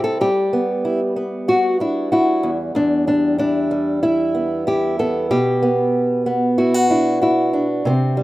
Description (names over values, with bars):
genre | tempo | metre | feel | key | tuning
acoustic pop | 94 BPM | 4/4 | straight | unclear | A4 = 440 Hz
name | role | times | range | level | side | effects
nylon-string guitar | melody | 0.0-8.2 s | C4 to A4 | -19 LUFS | left 1 dB | none
fingerpicked acoustic archtop guitar | accompaniment | 0.0-8.2 s | E2 to F#4 | -18 LUFS | right 1 dB | none
room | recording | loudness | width
light reverb, small room ambience | rough home demo mix | -16 LUFS | side -17 dB against mid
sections
0.0-8.2 A section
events
none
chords
0.2 Gmaj7; 2.4 Em; 5.3 Bm